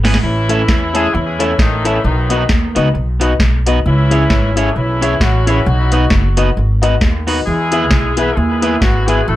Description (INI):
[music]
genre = ska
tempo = 133 BPM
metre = 4/4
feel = swing 58% on 8ths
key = E major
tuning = A4 = 440 Hz
[part]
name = electric guitar at the edge of break-up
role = accompaniment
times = 0.0-9.2 s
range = A3 to C#5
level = -20 LUFS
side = right 4 dB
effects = none
[part]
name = upright bass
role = bass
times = 0.0-9.4 s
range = F#1 to E2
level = -15 LUFS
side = equal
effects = none
[part]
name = soft vintage rhythm box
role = drums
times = 0.0-9.2 s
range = hi-hat, kick drum, snare drum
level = -15 LUFS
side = equal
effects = none
[part]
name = clear horn section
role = melody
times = 0.2-9.4 s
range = C#3 to B4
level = -19 LUFS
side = left 1 dB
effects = tape echo
[part]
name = clear upright piano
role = stabs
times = 0.5-9.2 s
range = D#4 to E5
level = -20 LUFS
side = left 5 dB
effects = none
[sound]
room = light reverb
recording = none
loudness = -12 LUFS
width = side -14 dB against mid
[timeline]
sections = 0.0-9.4 A section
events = drum fill 0.0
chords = 0.2 A; 2.0 B; 3.8 C#m; 5.7 B; 7.5 E